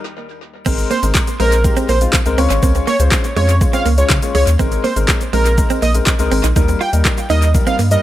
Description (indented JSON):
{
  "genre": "dance-pop",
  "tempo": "122 BPM",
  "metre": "4/4",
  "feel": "straight",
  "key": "Ab major",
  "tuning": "A4 = 441 Hz",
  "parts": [
    { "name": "warm grand piano", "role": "accompaniment", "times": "0.7-8.0 s", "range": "G3 to Db5", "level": "-21 LUFS", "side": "left 6 dB", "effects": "sidechain pumping, tape echo" },
    { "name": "direct-recorded clean electric guitar", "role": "riff", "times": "0.7-7.9 s", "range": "Ab3 to F4", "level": "-23 LUFS", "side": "right 6 dB", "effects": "wide subtle chorus, tape echo" },
    { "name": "round analog bass", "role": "bass", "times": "0.7-8.0 s", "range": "Ab1 to Db3", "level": "-15 LUFS", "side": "equal", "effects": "sidechain pumping" },
    { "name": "smooth R&B drum kit", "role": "drums", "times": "0.7-8.0 s", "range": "crash cymbal, handclaps, hi-hat, kick drum, shaker, snare drum", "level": "-17 LUFS", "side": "equal", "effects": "tape echo" },
    { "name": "tube shaker", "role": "percussion", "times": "0.7-8.0 s", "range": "none", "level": "-35 LUFS", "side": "left 7 dB", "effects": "none" },
    { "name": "fat analog lead", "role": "melody", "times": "0.9-8.0 s", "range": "Bb4 to G5", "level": "-20 LUFS", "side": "right 2 dB", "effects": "tape echo" }
  ],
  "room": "light reverb",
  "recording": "echo-heavy mix",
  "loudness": "-12 LUFS",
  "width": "side -14 dB against mid",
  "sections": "0.7-8.0 A section",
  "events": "stop 0.0-0.7; drop 0.7-8.0",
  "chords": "0.0 N.C.; 0.7 Abadd9; 2.4 Db; 4.6 Abadd9; 6.6 Eb"
}